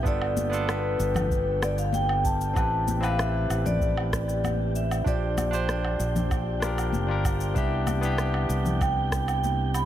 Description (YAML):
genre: sunset chillout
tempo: 96 BPM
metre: 4/4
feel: straight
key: C major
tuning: A4 = 441 Hz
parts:
  - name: vibraphone with medium mallets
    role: melody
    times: 0.0-9.9 s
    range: B4 to B5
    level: -30 LUFS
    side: left 1 dB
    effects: ping-pong delay, shimmer reverb
  - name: barky tine electric piano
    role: accompaniment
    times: 0.0-9.9 s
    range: B3 to C5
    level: -31 LUFS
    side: moving between left 5 dB and right 8 dB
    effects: auto-pan, tape echo, shimmer reverb
  - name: fingered electric bass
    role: bass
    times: 0.0-9.9 s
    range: F1 to C2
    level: -27 LUFS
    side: right 1 dB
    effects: none
  - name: wind-like tuned noise texture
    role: texture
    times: 0.0-9.9 s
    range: G4 to G5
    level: -39 LUFS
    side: right 1 dB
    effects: built-in reverb, shimmer reverb
  - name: electronic cabasa, woodblock and rim click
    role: drums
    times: 0.1-9.9 s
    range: none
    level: -34 LUFS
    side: equal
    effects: none
  - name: electronic kick drum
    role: drums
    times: 0.1-9.2 s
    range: none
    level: -29 LUFS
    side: right 1 dB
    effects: overdrive
  - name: congas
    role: percussion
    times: 0.4-9.6 s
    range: none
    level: -34 LUFS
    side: left 4 dB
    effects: none
room: light reverb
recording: none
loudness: -23 LUFS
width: side -11 dB against mid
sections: 0.0-9.9 A section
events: none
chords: 0.1 G7; 2.6 Am9; 5.1 Bb6; 7.6 Cmaj7